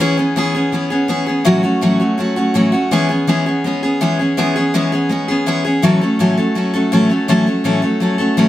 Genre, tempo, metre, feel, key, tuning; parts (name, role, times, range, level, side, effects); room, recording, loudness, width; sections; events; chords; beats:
rock; 165 BPM; 4/4; straight; E major; A4 = 440 Hz
picked steel-string acoustic guitar; solo; 0.0-8.5 s; A2 to A4; -13 LUFS; equal
moderate small room reverb, RT60 0.5 s; -13 LUFS; side -14 dB against mid
0.0-8.5 A section
0.0 E6; 1.5 A6; 2.9 E6; 5.8 A6
| 0.00 0.36 0.73 1.09 | 1.46 1.82 2.19 2.55 | 2.92 3.28 3.65 4.01 | 4.38 4.74 5.11 5.47 | 5.83 6.20 6.56 6.92 | 7.29 7.65 8.01 8.38